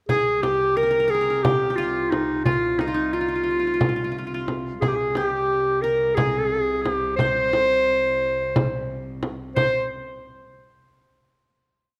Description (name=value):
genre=Turkish makam ensemble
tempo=177 BPM (eighths)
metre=7/8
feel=straight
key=C makam ussak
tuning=A4 = 441 Hz
part: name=bright clarinet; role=melody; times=0.1-9.9 s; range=Eb4 to C5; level=-24 LUFS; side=equal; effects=none
part: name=qanun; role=second line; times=0.1-9.9 s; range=Eb4 to C5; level=-32 LUFS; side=equal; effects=none
part: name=rich symphonic cello section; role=drone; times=0.1-9.6 s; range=C2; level=-36 LUFS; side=equal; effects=none
part: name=frame drum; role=percussion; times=0.1-9.9 s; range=none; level=-28 LUFS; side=equal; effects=none
room=moderate scoring stage reverb, RT60 1.9 s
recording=none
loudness=-22 LUFS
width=mono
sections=0.1-9.6 A section; 9.6-11.9 final note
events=none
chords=none